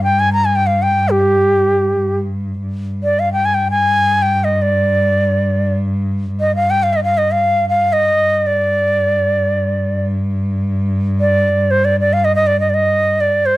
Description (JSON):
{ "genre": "Turkish makam ensemble", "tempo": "free time", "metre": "none", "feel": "none", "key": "unclear", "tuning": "A4 = 440 Hz", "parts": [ { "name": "breathy bright ney", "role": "melody", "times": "0.0-13.6 s", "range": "G4 to Bb5", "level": "-14 LUFS", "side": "equal", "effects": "slapback echo" }, { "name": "rich cello", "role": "drone", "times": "0.0-13.6 s", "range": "G2", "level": "-18 LUFS", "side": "equal", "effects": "none" } ], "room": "light reverb", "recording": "dry, close 1970s-style studio recording", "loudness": "-13 LUFS", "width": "side -17 dB against mid", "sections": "0.0-2.6 A section; 2.6-13.6 A section", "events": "none", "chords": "none" }